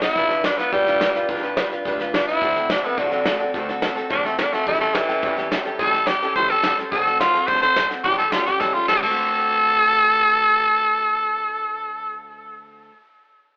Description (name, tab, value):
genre	rockabilly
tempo	214 BPM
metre	4/4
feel	straight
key	D mixolydian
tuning	A4 = 436 Hz
part	raspy tenor saxophone	melody	0.0-12.2 s	D3 to C5	-21 LUFS	equal	tape echo
part	picked steel-string acoustic guitar	accompaniment	0.0-13.0 s	A2 to B4	-30 LUFS	equal	none
part	upright bass	bass	0.0-12.9 s	G1 to E2	-37 LUFS	equal	none
part	soft brush drum kit	drums	0.0-9.1 s	crash cymbal, hi-hat, kick drum, snare drum	-29 LUFS	equal	none
room	moderate studio ambience, RT60 0.5 s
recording	band playing live in one room, telephone sound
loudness	-20 LUFS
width	mono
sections	0.0-9.2 A section; 9.2-11.4 B section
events	drum fill 0.0, 8.6-9.2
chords	0.2 G7; 2.4 D7; 4.7 A7; 6.9 D7; 8.0 A7; 9.0 D7